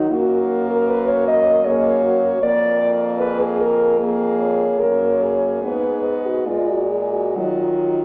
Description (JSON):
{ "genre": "classical, lyrical piece for horn quartet", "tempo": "66-78 BPM", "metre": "3/4", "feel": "rubato", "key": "unclear", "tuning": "A4 = 442 Hz", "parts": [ { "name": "clear French horn", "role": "melody", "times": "0.0-8.0 s", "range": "Gb4 to Eb5", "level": "-28 LUFS", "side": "equal", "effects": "none" }, { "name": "dark French horn", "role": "second line", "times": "0.0-8.0 s", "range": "Eb4 to Eb5", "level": "-21 LUFS", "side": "equal", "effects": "none" }, { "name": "mellow French horn", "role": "accompaniment", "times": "0.0-8.0 s", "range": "Gb3 to Cb4", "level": "-26 LUFS", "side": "equal", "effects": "none" }, { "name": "warm French horn", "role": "bass", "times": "0.0-8.0 s", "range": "F2 to Eb3", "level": "-28 LUFS", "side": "equal", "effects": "none" } ], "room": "wet recital hall reverb, RT60 1.6 s", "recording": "none", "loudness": "-19 LUFS", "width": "mono", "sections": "0.0-8.0 A section", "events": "none", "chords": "0.1 Gb; 2.4 Bb5/F; 4.8 Gbadd9; 5.6 Abm7; 6.5 Bb7; 7.4 Ebm" }